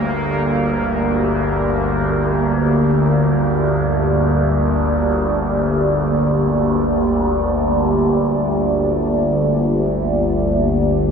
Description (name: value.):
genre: dark ambient drone.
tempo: free time.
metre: none.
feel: none.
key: unclear.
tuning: A4 = 440 Hz.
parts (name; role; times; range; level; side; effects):
deep dark ambient pad; sustained chords; 0.0-11.1 s; Bb3 to D5; -19 LUFS; equal; chorus, built-in reverb.
overtone-sweeping drone; drone; 0.0-11.1 s; G1 to D2; -18 LUFS; equal; chorus, built-in reverb, phaser.
bubbling stepped-filter texture; texture; 0.0-8.0 s; Bb3 to Bb4; -26 LUFS; right 1 dB; chorus, built-in reverb.
room: wet huge ambient reverb, RT60 8.0 s.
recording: in a vast, echoing space.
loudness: -15 LUFS.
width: side -6 dB against mid.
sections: 0.0-7.9 A section; 7.9-11.1 B section.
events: none.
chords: 0.0 Gm.